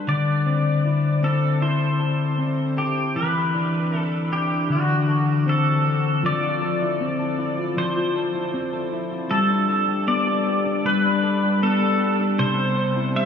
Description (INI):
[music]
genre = dream pop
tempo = 78 BPM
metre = 4/4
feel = straight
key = unclear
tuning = A4 = 443 Hz
[part]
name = clean electric guitar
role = arpeggios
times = 0.0-13.3 s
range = C3 to C5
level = -21 LUFS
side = left 2 dB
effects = lush chorus, diffuse ambient delay
[part]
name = pedal steel guitar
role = melody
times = 0.1-13.3 s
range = F#4 to E5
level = -24 LUFS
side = right 1 dB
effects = analog chorus, diffuse ambient delay
[sound]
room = wet huge ambient reverb, RT60 8.2 s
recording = dreamy mix soaked in reverb, studio reverb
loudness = -19 LUFS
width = side -7 dB against mid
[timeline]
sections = 0.0-6.2 A section; 6.2-13.3 B section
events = none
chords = 0.1 Dsus2; 3.1 E5; 4.7 D7; 6.2 Fmaj7; 9.3 Gadd9; 12.4 C